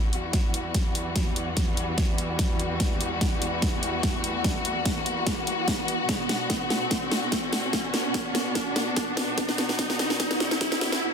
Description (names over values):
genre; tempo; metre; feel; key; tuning
heavy wobble dubstep; 146 BPM; 4/4; swing 54% on 16ths, half-time; E minor; A4 = 442 Hz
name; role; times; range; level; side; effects
warm studio string section; sustained chords; 0.0-11.1 s; E2 to F#4; -29 LUFS; left 1 dB; sidechain pumping
riser; sound effects; 0.0-11.0 s; none; -33 LUFS; equal; none
dubstep drum kit; drums; 0.1-11.0 s; hi-hat, snare drum; -28 LUFS; equal; none
electronic kick drum; drums; 0.3-10.7 s; none; -28 LUFS; equal; overdrive
room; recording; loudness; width
moderate plate reverb, RT60 1.2 s; dense, heavily limited modern master, high-pass filter; -24 LUFS; side -6 dB against mid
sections
0.0-11.1 A section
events
build-up 0.0-11.1; drum fill 0.0-11.0; riser 0.0-11.0; filter sweep 0.0-11.1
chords
0.0 Emadd9; 6.1 Bm